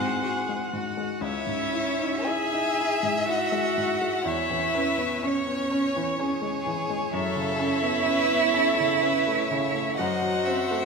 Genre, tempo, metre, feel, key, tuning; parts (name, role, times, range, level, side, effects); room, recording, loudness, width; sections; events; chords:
classical, slow romantic movement for piano quintet; 54-66 BPM; 3/4; rubato; C# minor; A4 = 440 Hz
rich violin; melody; 0.0-10.8 s; B#4 to G#5; -30 LUFS; left 6 dB
clear cello; second line; 0.0-10.8 s; B#3 to G#4; -27 LUFS; right 6 dB
clear violin; second line; 0.0-10.8 s; E4 to E5; -32 LUFS; left 3 dB
rich viola; accompaniment; 0.0-10.8 s; B#4 to F#5; -33 LUFS; right 4 dB
warm baby grand piano; accompaniment; 0.0-10.8 s; C#2 to F#4; -29 LUFS; left 1 dB
wet recital hall reverb, RT60 1.3 s; minimal, uncompressed stereo recording; -23 LUFS; side -4 dB against mid
0.0-10.8 A section
0.0 G#7/C#; 1.2 C#m; 4.3 C#m/E; 7.1 F#m; 10.0 G#7/F# (rootless)